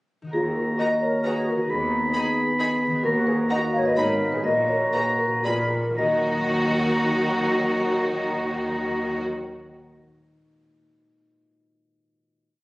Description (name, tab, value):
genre	cinematic, playful, whimsical film cue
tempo	112-133 BPM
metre	3/4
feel	straight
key	Eb minor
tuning	A4 = 440 Hz
part	concert harp	arpeggios	0.2-9.9 s	Ab2 to Gb5	-37 LUFS	left 1 dB	none
part	marimba with soft mallets	melody	0.3-9.2 s	Ab4 to Gb5	-26 LUFS	left 1 dB	none
part	clear oboe	second line	0.3-9.2 s	Bb5 to Cb6	-27 LUFS	equal	none
part	mellow clarinet	second line	0.3-9.2 s	Eb4 to Ab4	-34 LUFS	equal	none
part	mellow flute section	second line	0.3-9.2 s	Eb4 to Eb5	-32 LUFS	equal	none
part	mellow French horn section	sustained chords	0.3-9.2 s	Bb3 to Ab4	-27 LUFS	equal	none
part	rich chamber double bass section	bass	0.3-9.2 s	Ab1 to Eb2	-35 LUFS	equal	none
part	rich symphonic cello section	bass	0.3-9.2 s	Eb2 to Eb3	-33 LUFS	right 1 dB	none
part	rich studio violin section	melody	0.8-9.2 s	Gb4 to Cb6	-32 LUFS	equal	none
part	rich chamber violin section	second line	0.8-9.2 s	Eb4 to Ab4	-37 LUFS	equal	none
part	rich chamber viola section	accompaniment	0.8-9.2 s	Gb3 to F4	-36 LUFS	equal	none
room	wet recital hall reverb, RT60 1.6 s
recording	recorded on a phone in the room, studio reverb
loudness	-21 LUFS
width	side -20 dB against mid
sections	0.3-6.0 A section; 6.0-9.2 final chord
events	slowing down 2.4-6.0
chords	0.3 Ebm; 1.7 Abm/Eb; 3.0 Ebm; 4.0 Abm; 4.4 Ebm/Bb; 5.4 Bb7b9; 6.0 Ebm